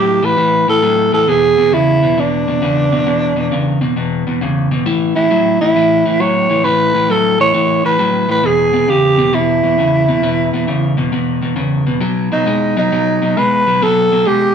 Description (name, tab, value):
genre	blues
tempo	134 BPM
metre	4/4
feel	swing 67% on 8ths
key	E mixolydian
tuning	A4 = 440 Hz
part	growling tenor saxophone	melody	0.0-14.5 s	D4 to C#5	-13 LUFS	right 2 dB	none
part	electric guitar at the edge of break-up	riff	0.0-14.5 s	E2 to G#3	-15 LUFS	left 2 dB	none
room	moderate large studio reverb, RT60 1.2 s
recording	band playing live in one room, nothing above 10.7 kHz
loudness	-12 LUFS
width	side -7 dB against mid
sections	0.0-14.5 A section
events	none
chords	0.0 A5; 1.3 E7(no3); 4.9 A; 8.4 E5; 12.0 B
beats	0.37 0.82 | 1.27 1.72 2.17 2.61 | 3.06 3.51 3.96 4.41 | 4.85 5.30 5.75 6.20 | 6.64 7.09 7.54 7.99 | 8.44 8.88 9.33 9.78 | 10.23 10.68 11.13 11.57 | 12.02 12.47 12.92 13.37 | 13.82 14.27